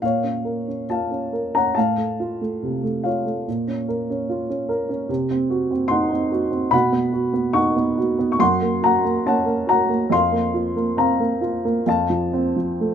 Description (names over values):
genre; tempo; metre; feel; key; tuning
classical, lyrical solo piano; 71 BPM; 4/4; uneven beats, rubato; Bb harmonic minor; A4 = 440 Hz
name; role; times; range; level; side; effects
dark baby grand piano; solo; 0.0-12.9 s; F2 to C#6; -19 LUFS; equal; none
room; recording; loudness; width
light reverb; close, detailed microphones; -19 LUFS; side -8 dB against mid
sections
0.0-12.9 A section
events
none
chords
0.0 Bbm; 1.8 F/A; 3.5 Bbm; 5.1 Cdim; 6.7 Badd9; 8.4 Gb; 10.1 Fsus4; 11.9 F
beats
| 0.02 0.90 1.76 2.62 | 3.47 4.29 5.10 5.91 | 6.73 7.57 8.41 9.26 | 10.12 10.98 11.87 12.80